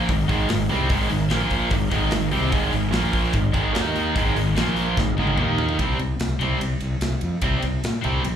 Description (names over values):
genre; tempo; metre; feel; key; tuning
hard rock; 147 BPM; 4/4; straight; C minor; A4 = 439 Hz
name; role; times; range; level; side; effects
overdriven tonewheel organ; sustained chords; 0.0-5.8 s; Ab3 to F5; -34 LUFS; left 1 dB; slow rotary speaker, chorus vibrato
scooped high-gain guitar; riff; 0.0-8.2 s; Ab2 to Eb4; -25 LUFS; left 9 dB; distortion
tight distorted guitar; riff; 0.0-8.2 s; Ab2 to Eb4; -26 LUFS; right 11 dB; distortion, slapback echo
fuzz fingered electric bass; bass; 0.0-8.4 s; Ab1 to Bb2; -24 LUFS; equal; overdrive
tight metal drum kit; drums; 0.1-8.3 s; hi-hat, kick drum, ride cymbal, snare drum, toms; -27 LUFS; equal; none
room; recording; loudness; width
small room ambience; live gig heard through the venue's PA, club reverb; -20 LUFS; side -9 dB against mid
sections
0.0-5.8 A section; 5.8-8.4 B section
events
drum fill 5.0-5.8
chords
0.1 Ab5; 1.3 Bb5; 1.7 Ab5; 2.9 Bb5; 3.3 Ab5; 3.7 Eb5; 4.2 Ab5; 4.6 Bb5; 5.0 Ab5; 5.4 Eb5; 5.8 C5